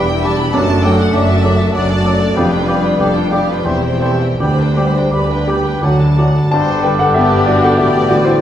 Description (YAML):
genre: classical, romantic movement for piano and orchestra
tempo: 78-100 BPM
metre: 3/4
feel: rubato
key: G major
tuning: A4 = 440 Hz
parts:
  - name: rich chamber violin section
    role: melody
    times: 0.0-8.4 s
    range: E4 to B5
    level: -27 LUFS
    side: left 4 dB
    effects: none
  - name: warm baby grand piano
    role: melody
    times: 0.0-8.4 s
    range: D2 to A5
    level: -15 LUFS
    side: equal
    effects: none
  - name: mellow oboe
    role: second line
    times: 0.0-8.4 s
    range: G5 to B5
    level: -25 LUFS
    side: equal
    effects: none
  - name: rich chamber violin section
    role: second line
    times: 0.0-8.4 s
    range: G4 to B5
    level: -24 LUFS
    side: left 2 dB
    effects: none
  - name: rich chamber viola section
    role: accompaniment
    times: 0.0-8.4 s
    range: G3 to B4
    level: -24 LUFS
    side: right 1 dB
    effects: none
  - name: warm bassoon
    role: accompaniment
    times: 0.0-8.4 s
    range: F#3 to B3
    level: -25 LUFS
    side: right 1 dB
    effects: none
  - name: mellow French horn section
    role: sustained chords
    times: 0.0-8.4 s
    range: F#3 to D4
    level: -22 LUFS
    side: left 2 dB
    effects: none
  - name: rich chamber double bass section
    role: bass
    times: 0.0-8.4 s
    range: E1 to D2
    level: -22 LUFS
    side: right 2 dB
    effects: none
  - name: warm chamber cello section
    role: bass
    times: 0.0-8.4 s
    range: D2 to A2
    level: -21 LUFS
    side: right 1 dB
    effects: none
  - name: mellow silver concert flute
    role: second line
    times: 0.2-8.4 s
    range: C6 to D6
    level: -23 LUFS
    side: right 1 dB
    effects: none
room: wet recital hall reverb, RT60 1.4 s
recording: recorded in a church or concert hall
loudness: -11 LUFS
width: side -10 dB against mid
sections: 0.0-6.5 A section; 6.5-8.4 B section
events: none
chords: 0.0 Em7; 0.5 D/F#; 2.4 G7/F; 3.7 C/E; 4.4 G/D; 5.8 D; 6.5 G